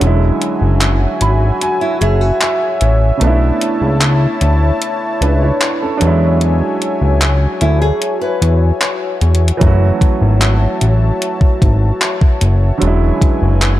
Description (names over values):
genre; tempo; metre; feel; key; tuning
contemporary R&B; 75 BPM; 4/4; straight; unclear; A4 = 443 Hz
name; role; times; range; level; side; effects
warm grand piano; accompaniment; 0.0-13.8 s; C#3 to B5; -19 LUFS; right 3 dB; none
warm analog pad; sustained chords; 0.0-13.8 s; E4 to A5; -20 LUFS; left 2 dB; chorus, sidechain pumping
fat analog bass; bass; 0.0-13.8 s; E1 to E2; -12 LUFS; equal; none
crisp 8-bit digital drum machine; drums; 0.0-13.8 s; handclaps, hi-hat, kick drum; -15 LUFS; equal; overdrive
nylon-string guitar; arpeggios; 1.8-9.4 s; E4 to B4; -20 LUFS; left 1 dB; digital delay
room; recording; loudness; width
little or no reverb; dark, warm production; -11 LUFS; side -14 dB against mid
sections
0.0-13.8 A section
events
break 0.0-9.6; grand piano fill 0.8-3.2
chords
0.0 E13; 3.2 Bm11; 6.0 E13; 9.6 F#m7; 12.8 E13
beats
| 0.01 0.81 1.61 2.41 | 3.21 4.01 4.81 5.61 | 6.41 7.21 8.01 8.81 | 9.61 10.41 11.21 12.01 | 12.81 13.61